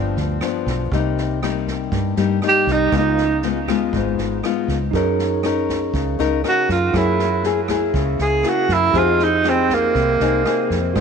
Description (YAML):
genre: bossa nova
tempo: 120 BPM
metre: 4/4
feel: straight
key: F minor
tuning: A4 = 439 Hz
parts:
  - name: nylon-string guitar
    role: accompaniment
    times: 0.0-11.0 s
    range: G2 to Bb4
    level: -21 LUFS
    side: left 10 dB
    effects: none
  - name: fingered electric bass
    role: bass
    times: 0.0-11.0 s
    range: G1 to Ab2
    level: -23 LUFS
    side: right 2 dB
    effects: none
  - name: open jazz drum kit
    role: drums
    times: 0.2-11.0 s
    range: kick drum, rim click, snare drum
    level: -30 LUFS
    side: right 2 dB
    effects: none
  - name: breathy tenor saxophone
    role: melody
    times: 2.5-3.4, 6.5-11.0 s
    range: Bb3 to Ab4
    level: -18 LUFS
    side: right 4 dB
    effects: tape echo
  - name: tine electric piano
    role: accompaniment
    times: 4.9-11.0 s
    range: Eb4 to Eb5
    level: -26 LUFS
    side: right 15 dB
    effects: medium stereo tremolo
room: light reverb, small room ambience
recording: 1960s-style stereo with parts hard left and right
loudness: -16 LUFS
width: side -6 dB against mid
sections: 0.0-11.0 A section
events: tenor saxophone solo 0.0-11.0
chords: 0.0 G7; 0.9 Cm7; 2.9 Db7; 4.9 Gb6; 6.9 Gb9; 8.9 Fm7